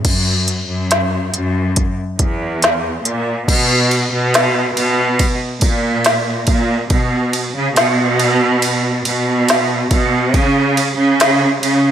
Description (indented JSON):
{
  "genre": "pop ballad",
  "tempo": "70 BPM",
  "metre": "4/4",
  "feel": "straight",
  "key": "unclear",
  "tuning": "A4 = 440 Hz",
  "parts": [
    { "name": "clear studio cello section", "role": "bass", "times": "0.0-11.9 s", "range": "E2 to C#3", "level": "-15 LUFS", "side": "right 1 dB", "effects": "none" },
    { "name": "organic electronic drum kit", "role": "drums", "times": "0.0-11.8 s", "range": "crash cymbal, hi-hat, kick drum, ride cymbal, snare drum", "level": "-17 LUFS", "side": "equal", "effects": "overdrive" }
  ],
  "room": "light reverb",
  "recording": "none",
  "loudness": "-13 LUFS",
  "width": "side -9 dB against mid",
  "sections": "0.1-3.5 A section; 3.5-11.9 B section",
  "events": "none",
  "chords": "none"
}